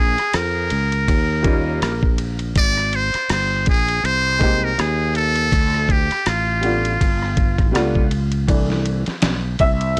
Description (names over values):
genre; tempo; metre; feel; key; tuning
hip hop, jazz-hop; 81 BPM; 4/4; swing 57% on 16ths; unclear; A4 = 439 Hz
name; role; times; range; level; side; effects
trumpet with metal mute; melody; 0.0-7.8 s; F4 to D5; -23 LUFS; equal; analog delay
sustaining fretless electric bass; bass; 0.0-10.0 s; G1 to F2; -24 LUFS; equal; tube saturation, lush chorus
lo-fi sampler-style drum kit; drums; 0.2-10.0 s; hi-hat, kick drum, ride cymbal, rim click, snare drum; -23 LUFS; equal; none
clear upright piano; accompaniment; 1.4-10.0 s; E3 to E5; -24 LUFS; equal; none
room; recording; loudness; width
little or no reverb; dry, gritty hardware recording; -19 LUFS; mono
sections
0.0-8.5 A section; 8.5-10.0 B section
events
upright piano solo 8.5-10.0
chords
0.0 Bbm7; 1.1 Eb7; 2.6 Abmaj7; 5.5 Dm; 7.0 G7; 8.5 C6